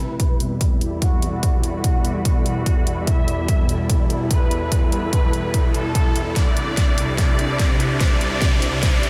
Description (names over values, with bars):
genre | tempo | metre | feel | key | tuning
heavy wobble dubstep | 146 BPM | 4/4 | half-time | E minor | A4 = 438 Hz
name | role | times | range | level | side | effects
clear studio violin section | melody | 0.0-9.1 s | F#4 to E5 | -31 LUFS | equal | low-pass filter, analog delay
supersaw pad | sustained chords | 0.0-9.1 s | C2 to E4 | -27 LUFS | equal | sidechain pumping, low-pass filter
riser | sound effects | 0.0-9.1 s | none | -32 LUFS | equal | none
ethereal airy pad | texture | 0.0-9.1 s | E4 to B5 | -33 LUFS | equal | ensemble chorus, built-in reverb, sidechain pumping
dubstep drum kit | drums | 0.2-9.1 s | hi-hat, snare drum | -31 LUFS | equal | overdrive, high-pass filter on hats, studio reverb, high-pass filter on snare
electronic kick drum | drums | 0.2-8.9 s | none | -21 LUFS | equal | studio reverb
room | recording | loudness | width
light reverb, digital ambience | none | -20 LUFS | mono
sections
0.0-9.1 A section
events
build-up 0.0-9.1; riser 0.0-9.1; filter sweep on supersaw synth 0.0-9.1; filter sweep on violin section 0.0-9.1; drum fill 6.4-9.1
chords
0.0 Em; 6.4 Cadd9